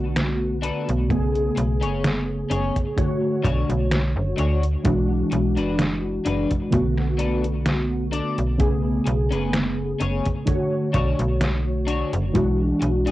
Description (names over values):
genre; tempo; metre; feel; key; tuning
vaporwave; 64 BPM; 4/4; swing 54% on 16ths; unclear; A4 = 440 Hz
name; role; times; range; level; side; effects
warbly lo-fi synth keys; accompaniment; 0.0-13.1 s; C#3 to C#5; -24 LUFS; equal; ensemble chorus, tape echo
slap-like FM bass; bass; 0.0-13.1 s; F#1 to D2; -24 LUFS; equal; none
detuned 8-bit digital drum machine; drums; 0.2-13.1 s; hi-hat, snare drum; -25 LUFS; equal; overdrive
electric guitar at the edge of break-up; riff; 0.6-13.1 s; C#4 to D5; -30 LUFS; left 5 dB; analog chorus, vintage 12-bit sampler grit, tape echo
kick drum; drums; 1.1-12.6 s; none; -25 LUFS; equal; none
room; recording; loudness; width
light reverb; home recording on cassette; -20 LUFS; side -16 dB against mid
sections
0.0-13.1 A section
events
none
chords
0.0 Bm7; 1.1 Amaj9; 3.0 Dmaj7/B; 4.9 E9; 6.7 Bm7; 8.6 Amaj9; 10.5 Dmaj7/B; 12.4 E9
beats
0.16 | 1.10 2.04 2.98 3.91 | 4.85 5.79 6.73 7.66 | 8.60 9.54 10.48 11.41 | 12.35